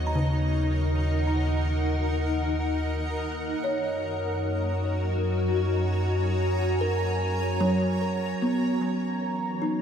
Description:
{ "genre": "ambient", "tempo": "50 BPM", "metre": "4/4", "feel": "straight", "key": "unclear", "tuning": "A4 = 440 Hz", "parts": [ { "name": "granular cloud pad", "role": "sustained chords", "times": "0.0-9.8 s", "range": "E3 to A#5", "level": "-28 LUFS", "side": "left 1 dB", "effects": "built-in reverb, wide subtle chorus" }, { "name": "kalimba", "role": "arpeggios", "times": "0.0-9.8 s", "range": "C#3 to C#6", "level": "-30 LUFS", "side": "right 1 dB", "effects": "ping-pong delay" }, { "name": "warm sub bass", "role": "bass", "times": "0.0-8.3 s", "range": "D#2 to F#2", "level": "-28 LUFS", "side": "equal", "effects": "none" } ], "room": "wet lush hall reverb, RT60 2.5 s", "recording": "dreamy mix soaked in reverb", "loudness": "-24 LUFS", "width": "side -8 dB against mid", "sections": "0.0-8.4 A section; 8.4-9.8 B section", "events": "filter sweep on ambient pad 8.4-9.8", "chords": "0.0 D#m; 3.6 F#add9; 8.4 E5" }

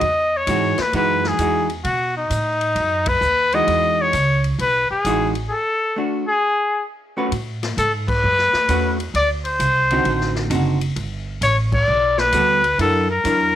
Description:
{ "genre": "jazz, small-group swing and bop", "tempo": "132 BPM", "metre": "4/4", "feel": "swing 67% on 8ths", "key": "E major", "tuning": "A4 = 440 Hz", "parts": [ { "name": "clear trumpet", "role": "melody", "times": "0.0-13.6 s", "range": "D#4 to Eb5", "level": "-18 LUFS", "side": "left 2 dB", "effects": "none" }, { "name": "upright bass", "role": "bass", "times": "0.0-13.6 s", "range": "F#1 to B2", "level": "-24 LUFS", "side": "right 1 dB", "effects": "none" }, { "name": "swinging big-band drum kit", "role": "drums", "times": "0.0-13.4 s", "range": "crash cymbal, hi-hat, kick drum, ride cymbal, snare drum", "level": "-30 LUFS", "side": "left 2 dB", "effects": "none" }, { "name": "vintage hollow-body jazz guitar", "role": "accompaniment", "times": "0.5-13.5 s", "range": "D3 to B4", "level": "-22 LUFS", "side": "right 2 dB", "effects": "none" } ], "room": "light reverb, small room ambience", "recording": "1960s-style stereo", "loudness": "-16 LUFS", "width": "side -11 dB against mid", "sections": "0.0-7.3 A section; 7.3-13.6 B section", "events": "band accent 3.0, 8.0, 11.7; break 5.5-7.3", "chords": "0.0 Emaj9; 1.9 B; 3.7 Emaj9; 5.5 D/A; 6.4 Amaj13; 7.3 A69; 9.1 D7b9; 11.0 Gmaj9; 12.8 F#aug7" }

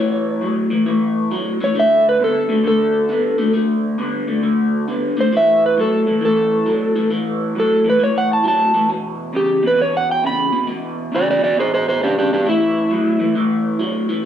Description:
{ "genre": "blues", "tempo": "134 BPM", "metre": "4/4", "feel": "swing 66% on 8ths", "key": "A mixolydian", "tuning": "A4 = 440 Hz", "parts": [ { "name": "electric slide guitar", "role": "melody", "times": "0.0-13.3 s", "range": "D4 to B5", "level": "-16 LUFS", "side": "right 1 dB", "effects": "none" }, { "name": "electric guitar through a small old amp", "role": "riff", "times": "0.0-14.2 s", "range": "E2 to B3", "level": "-19 LUFS", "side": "left 2 dB", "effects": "phaser" } ], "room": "wet large studio reverb, RT60 1.4 s", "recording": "band playing live in one room", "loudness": "-15 LUFS", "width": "side -9 dB against mid", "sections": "0.0-14.3 A section", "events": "none", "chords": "0.0 A; 1.8 D5; 5.3 A5; 8.9 E7(no3); 12.5 A5" }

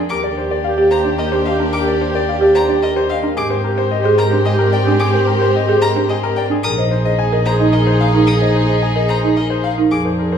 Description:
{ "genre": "classical, minimalist pattern music", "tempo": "110 BPM", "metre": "3/4", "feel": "straight", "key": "unclear", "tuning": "A4 = 440 Hz", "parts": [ { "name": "bright concert grand piano", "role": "melody", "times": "0.0-10.4 s", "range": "Ab4 to Ab5", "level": "-21 LUFS", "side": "left 7 dB", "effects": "none" }, { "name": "folk marimba with medium mallets", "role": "arpeggios", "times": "0.0-10.4 s", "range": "D4 to C5", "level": "-18 LUFS", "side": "right 2 dB", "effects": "none" }, { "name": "dark clarinet", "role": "second line", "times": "0.1-10.4 s", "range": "G4 to Ab4", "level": "-21 LUFS", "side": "right 3 dB", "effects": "none" }, { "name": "clear studio violin section", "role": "sustained chords", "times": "0.1-10.4 s", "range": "C4 to Ab4", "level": "-24 LUFS", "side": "left 4 dB", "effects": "none" }, { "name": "rich violin", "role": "arpeggios", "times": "0.1-10.0 s", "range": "Eb5 to Eb6", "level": "-25 LUFS", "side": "left 2 dB", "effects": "none" }, { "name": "rich double bass", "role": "bass", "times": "0.1-10.4 s", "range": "Bb1 to Ab2", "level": "-19 LUFS", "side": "right 2 dB", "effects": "none" } ], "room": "wet recital hall reverb, RT60 1.6 s", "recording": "heard from further back in the room", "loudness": "-13 LUFS", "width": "side -8 dB against mid", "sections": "0.0-10.4 A section", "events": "none", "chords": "0.1 Ebmaj7; 3.4 Abmaj9; 6.6 Bb7sus4" }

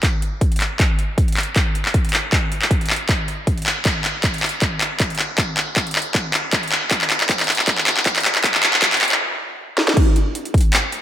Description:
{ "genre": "future bass", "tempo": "157 BPM", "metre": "4/4", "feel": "swing 54% on 16ths, half-time", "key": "none", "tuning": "none", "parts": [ { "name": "electronic kick drum", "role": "drums", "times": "0.0-10.6 s", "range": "none", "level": "-19 LUFS", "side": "equal", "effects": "overdrive" }, { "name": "trap drum kit", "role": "drums", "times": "0.0-11.0 s", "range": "crash cymbal, handclaps, hi-hat, snare drum", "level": "-18 LUFS", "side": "equal", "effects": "none" } ], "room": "wet plate reverb, RT60 2.0 s", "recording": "dreamy mix soaked in reverb, high-pass filter", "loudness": "-16 LUFS", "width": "side -11 dB against mid", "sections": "0.0-10.0 A section; 10.0-11.0 B section", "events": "build-up 0.0-10.0; drum fill 0.0-9.2, 9.8; filter sweep 0.0-10.0; stop 9.2-10.0; drop 10.0-11.0", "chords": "none" }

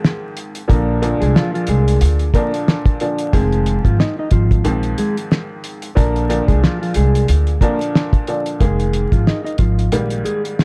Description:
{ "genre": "hip hop, boom-bap hip-hop", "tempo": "91 BPM", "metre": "4/4", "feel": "swing 57% on 16ths", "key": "F dorian", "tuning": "A4 = 440 Hz", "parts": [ { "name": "warm upright piano", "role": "accompaniment", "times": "0.0-10.6 s", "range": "Ab2 to D4", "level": "-25 LUFS", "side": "equal", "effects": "high-pass filter, low-pass filter" }, { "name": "cloth-damped thuddy drum kit", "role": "drums", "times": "0.0-10.6 s", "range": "hi-hat, kick drum, snare drum", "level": "-19 LUFS", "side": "equal", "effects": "none" }, { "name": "mellow electric guitar", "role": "melody", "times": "0.7-10.4 s", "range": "F3 to Eb5", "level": "-24 LUFS", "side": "equal", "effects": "spring reverb, high-pass filter, low-pass filter, digital delay" }, { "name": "upright bass", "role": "bass", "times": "0.7-10.2 s", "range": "F1 to D2", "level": "-19 LUFS", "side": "equal", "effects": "none" } ], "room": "small room ambience", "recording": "dark, warm production, vinyl crackle", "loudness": "-17 LUFS", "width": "mono", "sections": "0.0-8.6 A section; 8.6-10.6 B section", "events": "none", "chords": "0.0 Fm7; 0.7 Bb; 3.3 Fm7; 6.0 Bb; 8.6 Fm11" }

